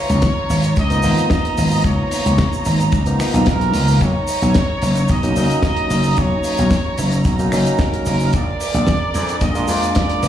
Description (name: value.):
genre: nu-disco, nu disco.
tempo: 111 BPM.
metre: 4/4.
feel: straight.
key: unclear.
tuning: A4 = 441 Hz.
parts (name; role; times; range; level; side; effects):
clear trumpet section; melody; 0.0-10.3 s; Bb4 to Eb5; -24 LUFS; equal; tape echo.
rich symphonic violin section; sustained chords; 0.0-10.3 s; Ab3 to Bb5; -26 LUFS; right 4 dB; sidechain pumping.
gritty slap bass; bass; 0.1-10.3 s; F1 to F2; -17 LUFS; left 1 dB; overdrive, sidechain pumping.
damped 70s drum kit; drums; 0.1-10.3 s; finger snaps, hi-hat, shaker, snare drum; -24 LUFS; left 1 dB; none.
kick drum; drums; 0.2-10.1 s; none; -20 LUFS; equal; none.
barky tine electric piano; accompaniment; 0.9-10.3 s; F3 to F4; -22 LUFS; equal; overdrive, vintage 12-bit sampler grit, sidechain pumping.
room: studio ambience.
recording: played on a big sound system in a bare room, stone room reverb, small room ambience.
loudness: -15 LUFS.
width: side -10 dB against mid.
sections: 0.0-10.3 A section.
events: none.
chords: 0.0 Db13; 4.0 Bmaj7; 8.3 Bb7.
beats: 0.23 0.77 1.31 | 1.85 2.39 2.93 3.47 | 4.01 4.55 5.09 5.63 | 6.17 6.71 7.25 7.79 | 8.33 8.88 9.41 9.96.